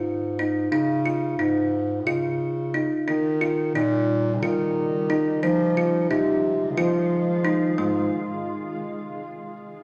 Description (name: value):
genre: contemporary instrumental, chamber music in an uneven meter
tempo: 178 BPM (eighths)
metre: 7/8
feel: straight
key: Ab major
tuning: A4 = 436 Hz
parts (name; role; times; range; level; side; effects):
- kalimba; arpeggios; 0.0-8.1 s; Ab3 to F4; -27 LUFS; equal; none
- mellow bass clarinet; bass; 0.0-8.1 s; Ab2 to F3; -27 LUFS; equal; none
- shimmering ambient pad; sustained chords; 3.9-8.1 s; Db3 to F4; -34 LUFS; equal; chorus, built-in reverb
room: wet recital hall reverb, RT60 1.7 s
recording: none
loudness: -24 LUFS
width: mono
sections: 0.0-7.8 A section; 7.8-9.8 B section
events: none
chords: 0.0 Ab5; 0.7 Db; 3.1 Eb7; 5.4 Fm7; 7.8 Ab6